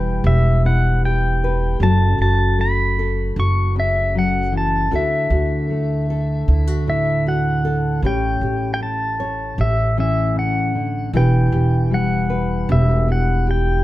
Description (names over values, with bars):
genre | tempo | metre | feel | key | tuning
acoustic folk duo or small band | 77 BPM | 4/4 | straight | A mixolydian | A4 = 440 Hz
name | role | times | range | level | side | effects
pedal steel guitar | melody | 0.0-13.8 s | E5 to C#6 | -23 LUFS | equal | plate reverb
nylon-string guitar | accompaniment | 0.0-13.8 s | A2 to C#5 | -23 LUFS | left 3 dB | none
upright bass | bass | 0.0-13.8 s | E1 to D2 | -18 LUFS | right 1 dB | none
room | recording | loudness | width
light reverb | none | -16 LUFS | side -16 dB against mid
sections
0.0-13.8 A section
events
none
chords
0.0 Em; 1.8 F#m; 4.9 Dadd9; 8.0 A7; 11.1 Emadd9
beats
0.25 1.03 | 1.81 2.59 3.36 4.14 | 4.92 5.70 6.47 7.25 | 8.03 8.80 9.58 10.36 | 11.13 11.91 12.69 13.46